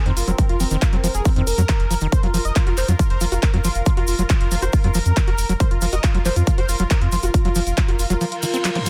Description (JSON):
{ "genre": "psychedelic trance", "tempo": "138 BPM", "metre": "4/4", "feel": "straight", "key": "unclear", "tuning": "A4 = 438 Hz", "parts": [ { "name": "bubbling stepped-filter texture", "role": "sustained chords", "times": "0.0-8.9 s", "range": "Bb4", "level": "-35 LUFS", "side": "equal", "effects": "chorus, built-in reverb, sidechain pumping" }, { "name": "unison lead", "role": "melody", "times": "0.1-8.9 s", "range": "C4 to Eb5", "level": "-29 LUFS", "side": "equal", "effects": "phaser, sidechain pumping, dub echo" }, { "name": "overdriven acid bass", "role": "riff", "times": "0.1-8.9 s", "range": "Eb3 to Gb4", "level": "-28 LUFS", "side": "equal", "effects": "sidechain pumping" }, { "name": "round analog bass", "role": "bass", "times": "0.1-8.2 s", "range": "F1 to F2", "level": "-24 LUFS", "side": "equal", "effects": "tube saturation" }, { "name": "big-room dance drum kit", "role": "drums", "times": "0.1-8.9 s", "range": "handclaps, hi-hat", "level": "-31 LUFS", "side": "equal", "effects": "none" }, { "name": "cabasa", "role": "percussion", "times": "0.2-8.9 s", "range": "none", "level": "-34 LUFS", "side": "equal", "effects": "none" }, { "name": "electronic kick drum", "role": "drums", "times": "0.4-7.9 s", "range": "none", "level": "-21 LUFS", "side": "equal", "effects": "none" }, { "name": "reverse cymbal and zap", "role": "sound effects", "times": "8.3-8.9 s", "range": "none", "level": "-30 LUFS", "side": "equal", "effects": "none" } ], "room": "little or no reverb", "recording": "dense, heavily limited modern master", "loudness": "-19 LUFS", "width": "mono", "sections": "0.0-8.9 A section", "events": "reverse cymbal 8.3-8.9", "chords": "0.0 F5", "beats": "| 0.38 0.82 1.25 1.69 | 2.12 2.56 2.99 3.43 | 3.86 4.30 4.73 5.17 | 5.60 6.04 6.47 6.91 | 7.34 7.78 8.21 8.64" }